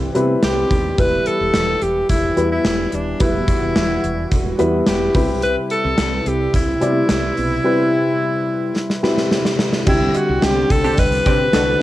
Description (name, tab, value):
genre	1980s-style pop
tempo	108 BPM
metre	4/4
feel	straight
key	unclear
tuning	A4 = 442 Hz
part	clear alto saxophone	melody	0.0-11.8 s	D4 to B4	-20 LUFS	equal	cassette tape, plate reverb
part	dark grand piano	accompaniment	0.0-11.8 s	D3 to D5	-21 LUFS	left 1 dB	cassette tape, plate reverb
part	chorused pulse-width pad	sustained chords	0.0-11.8 s	C3 to B4	-26 LUFS	equal	cassette tape
part	woody fretless electric bass	bass	0.0-11.7 s	D#1 to C3	-24 LUFS	equal	lush chorus
part	gated 80s drum kit	drums	0.1-11.7 s	crash cymbal, hi-hat, kick drum, snare drum	-19 LUFS	equal	cassette tape
part	cowbell	percussion	9.9-11.7 s	none	-34 LUFS	right 6 dB	none
part	funky polysynth comp	stabs	10.8-11.8 s	C4 to A4	-22 LUFS	right 1 dB	chorus, cassette tape, tape echo, plate reverb
room	wet studio reverb, RT60 0.5 s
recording	home recording on cassette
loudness	-15 LUFS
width	side -15 dB against mid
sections	0.0-9.9 A section; 9.9-11.8 B section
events	drum fill 8.8-9.9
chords	0.0 Cmaj7; 1.0 Em; 5.1 Cmaj7; 9.9 Csus2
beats	0.43 | 0.98 1.54 2.09 2.65 | 3.21 3.76 4.32 4.87 | 5.43 5.98 6.54 7.09 | 7.65 8.21 8.76 9.32 | 9.87 10.43 10.98 11.54